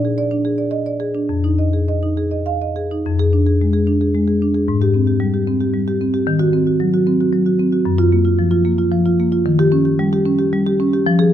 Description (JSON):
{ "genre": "classical, contemporary piece for solo marimba", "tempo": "112 BPM", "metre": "3/4", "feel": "rubato", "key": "F minor", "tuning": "A4 = 440 Hz", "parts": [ { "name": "marimba with soft mallets", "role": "solo", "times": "0.0-11.3 s", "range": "F2 to F5", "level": "-14 LUFS", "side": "equal", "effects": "none" } ], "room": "moderate recital hall reverb, RT60 1.3 s", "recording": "close, detailed microphones", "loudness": "-15 LUFS", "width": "side -10 dB against mid", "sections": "0.0-3.1 A section; 3.1-11.3 B section", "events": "none", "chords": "0.0 Bb7; 1.3 Fm7; 3.1 Fm6; 4.7 Abmaj7; 6.3 Ebm6; 7.8 Gbmaj7; 9.5 Eb7", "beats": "0.18 0.73 | 1.30 1.88 2.47 | 3.06 3.61 4.15 | 4.68 5.21 5.73 | 6.26 6.79 7.32 | 7.85 8.38 8.92 | 9.46 9.99 10.52 | 11.05" }